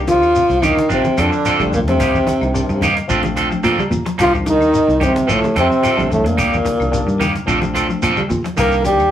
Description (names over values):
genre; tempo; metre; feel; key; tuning
afrobeat; 109 BPM; 4/4; straight; C dorian; A4 = 441 Hz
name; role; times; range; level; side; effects
barky tine electric piano; accompaniment; 0.0-9.0 s; Eb3 to Bb5; -25 LUFS; left 2 dB; overdrive
fingered electric bass; bass; 0.0-9.1 s; Bb1 to Bb2; -22 LUFS; equal; none
breathy trombone; melody; 0.1-9.1 s; A3 to Bb4; -16 LUFS; left 1 dB; none
clear tenor saxophone; second line; 0.1-9.1 s; A2 to Bb3; -20 LUFS; right 2 dB; none
clean electric guitar; arpeggios; 0.1-9.0 s; C3 to G3; -28 LUFS; left 2 dB; tremolo
electric guitar at the edge of break-up; stabs; 0.1-8.9 s; F3 to A4; -20 LUFS; right 3 dB; none
cajon; drums; 0.1-9.1 s; none; -31 LUFS; equal; none
congas; percussion; 0.1-9.0 s; none; -25 LUFS; equal; none
shekere; percussion; 0.1-9.1 s; none; -29 LUFS; left 2 dB; none
claves; percussion; 0.2-9.1 s; none; -35 LUFS; left 5 dB; none
room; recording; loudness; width
wet small room reverb, RT60 0.5 s; rough rehearsal-room recording, tube saturation; -13 LUFS; side -10 dB against mid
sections
0.0-9.1 A section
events
tine electric piano fill 2.5-4.2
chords
0.0 Cm7; 0.9 Bbmaj9; 2.0 Cm7; 3.1 Bbmaj9; 4.2 Cm7; 5.3 Bbmaj9; 6.4 Cm7; 7.5 Bbmaj9; 8.6 Cm7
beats
0.35 0.90 1.45 | 2.00 2.54 3.09 3.64 | 4.19 4.74 5.29 5.83 | 6.38 6.93 7.48 8.03 | 8.58